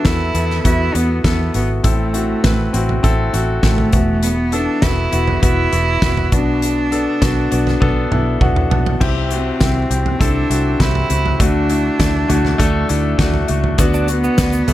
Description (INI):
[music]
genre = piano-driven pop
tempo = 100 BPM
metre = 4/4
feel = straight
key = unclear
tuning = A4 = 440 Hz
[part]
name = warm cello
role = melody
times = 0.0-14.7 s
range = A3 to E4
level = -20 LUFS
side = right 1 dB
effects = none
[part]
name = clear concert grand piano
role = accompaniment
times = 0.0-14.7 s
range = A2 to A5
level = -20 LUFS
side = left 2 dB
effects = none
[part]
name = loose indie drum kit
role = drums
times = 0.0-14.7 s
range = crash cymbal, hi-hat, kick drum, snare drum, toms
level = -18 LUFS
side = equal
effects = none
[part]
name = vintage muted fingered electric bass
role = bass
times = 0.1-14.7 s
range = E1 to E2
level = -19 LUFS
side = equal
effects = none
[part]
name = tube shaker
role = percussion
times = 13.8-14.7 s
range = none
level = -33 LUFS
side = right 9 dB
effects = none
[part]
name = direct-recorded clean electric guitar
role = riff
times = 13.9-14.7 s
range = A3 to D4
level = -24 LUFS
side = right 8 dB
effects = tremolo
[sound]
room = light reverb, small room reverb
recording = none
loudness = -14 LUFS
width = side -14 dB against mid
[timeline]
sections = 0.0-9.0 A section; 9.0-14.7 B section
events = drum fill 7.8-9.0; grand piano fill 8.1-9.0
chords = 0.0 Esus2; 1.8 Am; 3.9 Esus2; 6.3 Bm; 9.0 C; 11.4 D; 13.8 Bm/D